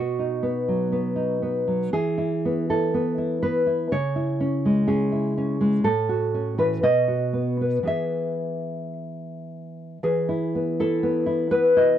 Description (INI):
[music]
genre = romantic piece for solo classical guitar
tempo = 54-63 BPM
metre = 2/4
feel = rubato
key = E major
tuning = A4 = 440 Hz
[part]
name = nylon-string guitar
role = solo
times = 0.0-12.0 s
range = A2 to E5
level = -21 LUFS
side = equal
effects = none
[sound]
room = light reverb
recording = dry, close 1970s-style studio recording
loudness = -21 LUFS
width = side -10 dB against mid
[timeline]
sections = 0.0-10.0 A section; 10.0-12.0 A section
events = none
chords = 0.0 B; 1.9 E5; 3.9 C#m; 5.8 F#m7/A; 6.8 B; 7.9 E; 10.0 E5